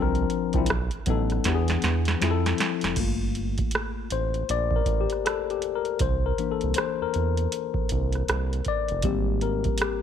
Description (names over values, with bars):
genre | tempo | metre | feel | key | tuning
R&B, neo-soul | 79 BPM | 4/4 | swing 63% on 16ths | G dorian | A4 = 441 Hz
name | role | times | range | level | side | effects
tine electric piano | accompaniment | 0.0-10.0 s | E3 to D5 | -27 LUFS | left 11 dB | none
round analog bass | bass | 0.0-9.7 s | F1 to F2 | -26 LUFS | right 2 dB | none
booming analog drum machine | drums | 0.1-10.0 s | crash cymbal, hi-hat, kick drum, rim click, snare drum | -28 LUFS | right 2 dB | none
room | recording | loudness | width
digital ambience | 1960s-style stereo | -23 LUFS | side -8 dB against mid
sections
0.0-3.0 A section; 3.0-10.0 B section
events
drum fill 1.4-3.0; tine electric piano solo 3.0-10.0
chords
0.0 C9sus4; 0.7 B7; 1.4 E7; 2.2 Fmaj7; 3.0 Gm9; 6.0 C9; 9.0 Abmaj9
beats
0.68 1.44 2.20 | 2.96 3.72 4.48 5.24 | 6.00 6.76 7.52 8.28 | 9.04 9.80